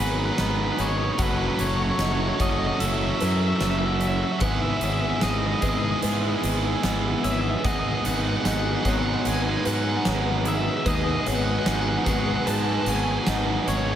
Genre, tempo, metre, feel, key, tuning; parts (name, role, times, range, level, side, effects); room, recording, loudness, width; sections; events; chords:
post-rock; 74 BPM; 4/4; straight; A4 = 439 Hz
crunchy overdriven guitar; melody; 0.0-14.0 s; B4 to A5; -30 LUFS; left 2 dB; diffuse ambient delay
warm studio string section; sustained chords; 0.0-14.0 s; D#3 to B4; -33 LUFS; left 4 dB
felt-muted upright piano; arpeggios; 0.0-14.0 s; B4 to F#5; -37 LUFS; right 1 dB; diffuse ambient delay
twangy electric guitar; arpeggios; 0.0-14.0 s; G#2 to G#4; -35 LUFS; left 5 dB; ensemble chorus, diffuse ambient delay
tight distorted guitar; riff; 0.0-14.0 s; F#3 to A4; -26 LUFS; right 4 dB; distortion
fuzz fingered electric bass; bass; 0.0-14.0 s; F#1 to G#2; -27 LUFS; equal; overdrive
huge arena drum kit; drums; 0.4-13.9 s; hi-hat, kick drum, snare drum; -30 LUFS; equal
moderate lush hall reverb, RT60 2.9 s; dreamy mix soaked in reverb; -21 LUFS; side -10 dB against mid
0.0-14.0 A section
0.0 G#m7; 1.2 F#m7; 4.4 Emaj7/G#; 7.6 G#m7